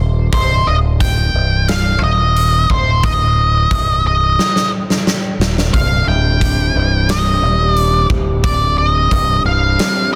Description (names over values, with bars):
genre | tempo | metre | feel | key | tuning
quiet-loud alternative rock | 89 BPM | 4/4 | straight | C minor | A4 = 440 Hz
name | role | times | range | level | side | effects
growling fingered electric bass | bass | 0.0-9.8 s | C1 to Eb1 | -18 LUFS | equal | overdrive
octave-fuzz lead guitar | melody | 0.3-10.2 s | C5 to G5 | -19 LUFS | equal | distortion
huge arena drum kit | drums | 0.3-9.9 s | hi-hat, kick drum, snare drum | -21 LUFS | equal | none
electric guitar through a small old amp | arpeggios | 5.7-10.2 s | C2 to G3 | -24 LUFS | equal | subtle chorus
room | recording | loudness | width
little or no reverb | dense, heavily limited modern master | -14 LUFS | mono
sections
0.0-10.2 A section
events
half time 0.0-10.2; drum fill 4.4-5.7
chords
0.0 Cm